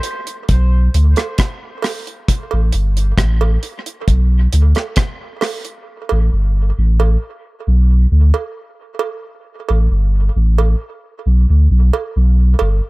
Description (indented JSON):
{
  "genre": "dub reggae",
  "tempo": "67 BPM",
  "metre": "4/4",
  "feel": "straight",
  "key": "unclear",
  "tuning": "A4 = 440 Hz",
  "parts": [
    { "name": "deep reggae drum kit", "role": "drums", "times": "0.0-5.8 s", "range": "hi-hat, kick drum, rim click", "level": "-18 LUFS", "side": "equal", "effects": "none" },
    { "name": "warm sub bass", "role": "bass", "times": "0.5-12.8 s", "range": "G1 to D2", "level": "-12 LUFS", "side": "equal", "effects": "none" },
    { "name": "cowbell", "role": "percussion", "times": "1.2-12.8 s", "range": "none", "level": "-24 LUFS", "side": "right 7 dB", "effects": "dub echo" }
  ],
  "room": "little or no reverb",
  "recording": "none",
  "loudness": "-13 LUFS",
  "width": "side -22 dB against mid",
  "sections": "0.0-12.9 A section",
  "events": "part muted 5.9-12.9",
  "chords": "none"
}